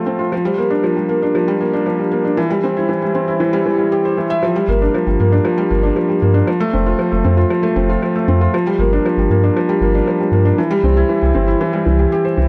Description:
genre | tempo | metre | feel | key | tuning
piano and strings electronica | 117 BPM | 4/4 | straight | G dorian | A4 = 444 Hz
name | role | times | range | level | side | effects
felt-muted upright piano | riff | 0.0-12.5 s | E3 to E5 | -17 LUFS | equal | delay
warm sub bass | bass | 4.7-12.5 s | F1 to G2 | -18 LUFS | equal | none
room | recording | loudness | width
moderate lush hall reverb, RT60 2.0 s | none | -16 LUFS | mono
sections
0.0-4.4 A section; 4.4-12.5 B section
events
build-up 0.0-4.4; drop 4.4-12.5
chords
0.3 Gm7; 2.4 C; 4.4 Gm7; 6.5 F; 8.5 Gm7; 10.6 C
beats
| 0.32 0.84 1.35 1.86 | 2.38 2.89 3.40 3.91 | 4.43 4.94 5.45 5.96 | 6.48 6.99 7.50 8.02 | 8.53 9.04 9.55 10.07 | 10.58 11.09 11.61 12.12

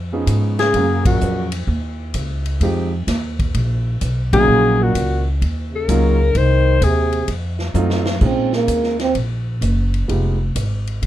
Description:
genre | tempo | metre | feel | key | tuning
jazz, small-group swing and bop | 128 BPM | 4/4 | swing 67% on 8ths | Bb minor | A4 = 439 Hz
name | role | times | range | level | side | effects
upright bass | bass | 0.0-11.1 s | F1 to Bb2 | -19 LUFS | equal | none
warm grand piano | accompaniment | 0.1-10.4 s | F3 to F5 | -22 LUFS | right 2 dB | none
swinging big-band drum kit | drums | 0.3-11.1 s | crash cymbal, hi-hat, kick drum, ride cymbal, snare drum, toms | -25 LUFS | equal | none
warm alto saxophone | melody | 0.6-1.5, 4.3-7.3 s | Gb4 to C5 | -18 LUFS | left 3 dB | none
breathy trombone | second line | 0.6-1.5, 4.3-9.1 s | Bb2 to C4 | -22 LUFS | right 4 dB | none
room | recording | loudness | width
light reverb | dark, warm production | -16 LUFS | side -13 dB against mid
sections
0.0-8.2 A section; 8.2-11.1 B section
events
band accent 1.0, 4.2; drum fill 7.8-8.2; trombone solo 8.2-11.1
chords
0.0 Db9; 0.7 Gbmaj7; 2.6 Fm7; 3.5 Bmaj9/A#; 4.5 Ebm7; 6.3 Ab/C; 7.3 F7b9; 8.2 Bbm11; 10.1 Fm7b5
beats
0.27 | 0.74 1.21 1.68 2.14 | 2.61 3.08 3.55 4.01 | 4.48 4.95 5.41 5.88 | 6.35 6.82 7.28 7.75 | 8.22 8.68 9.15 9.62 | 10.09 10.55 11.02

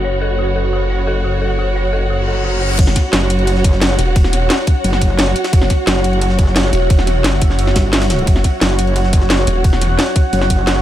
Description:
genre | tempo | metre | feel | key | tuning
dark technical drum and bass | 175 BPM | 4/4 | straight | unclear | A4 = 440 Hz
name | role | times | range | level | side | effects
deep dark ambient pad | sustained chords | 0.0-10.8 s | F#4 to B5 | -22 LUFS | equal | chorus, built-in reverb, sidechain pumping
dark detuned synth bell | arpeggios | 0.0-2.7 s | F#4 to C#5 | -26 LUFS | left 5 dB | chorus, sidechain pumping, dub echo
snarling distorted saw bass | bass | 0.0-10.0 s | E1 to F#1 | -17 LUFS | equal | distortion, sidechain pumping
rich studio string section | texture | 0.0-10.8 s | F#4 to F#5 | -22 LUFS | right 2 dB | sidechain pumping
reverse cymbal | sound effects | 2.2-2.8 s | none | -26 LUFS | left 4 dB | none
drum and bass drum kit | drums | 2.8-10.7 s | crash cymbal, hi-hat, snare drum | -19 LUFS | equal | none
electronic kick drum | drums | 2.8-10.6 s | none | -12 LUFS | equal | none
jungle sampler-style drum kit | drums | 2.8-10.8 s | ride cymbal, snare drum | -27 LUFS | equal | high-pass filter on cymbals, high-pass filter on snare, high-pass filter on room
metallic wobble bass | bass | 3.1-10.8 s | F#1 to G1 | -15 LUFS | equal | distortion, chorus
room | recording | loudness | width
light reverb, digital ambience | low-pass filter | -12 LUFS | side -12 dB against mid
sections
0.0-2.8 A section; 2.8-10.8 B section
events
filter sweep on ambient pad 0.0-2.8; filter sweep 0.0-2.8; reverse cymbal 2.2-2.8; drop 2.8-10.8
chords
0.0 F#5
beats
| 0.04 0.39 0.73 1.07 | 1.42 1.76 2.10 2.44 | 2.79 3.13 3.47 3.82 | 4.16 4.50 4.84 5.19 | 5.53 5.87 6.22 6.56 | 6.90 7.25 7.59 7.93 | 8.27 8.62 8.96 9.30 | 9.64 9.99 10.33 10.67

